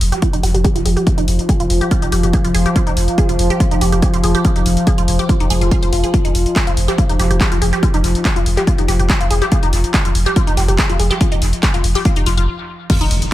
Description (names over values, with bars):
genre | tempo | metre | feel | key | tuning
driving peak-time techno | 142 BPM | 4/4 | straight | F minor | A4 = 438 Hz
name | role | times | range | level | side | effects
saturated sub bass | bass | 0.0-13.2 s | F1 | -18 LUFS | equal | tube saturation, sidechain pumping, low-pass filter
analog drone | drone | 0.0-13.3 s | F3 | -21 LUFS | left 1 dB | chorus, sidechain pumping
punchy analog drum machine | drums | 0.0-13.3 s | crash cymbal, handclaps, hi-hat | -23 LUFS | left 1 dB | dub echo
resonant blip pluck | riff | 0.1-13.1 s | Eb4 to F5 | -21 LUFS | equal | phaser, sidechain pumping, dub echo
electronic kick drum | drums | 0.2-13.0 s | none | -16 LUFS | equal | overdrive
impact | sound effects | 12.9-13.3 s | none | -21 LUFS | equal | none
room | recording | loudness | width
light reverb, digital ambience | echo-heavy mix | -13 LUFS | side -14 dB against mid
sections
0.0-12.9 A section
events
filter sweep on synth arpeggio sound 0.0-12.9; stop 12.5-12.9; impact 12.9-13.3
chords
0.0 Fm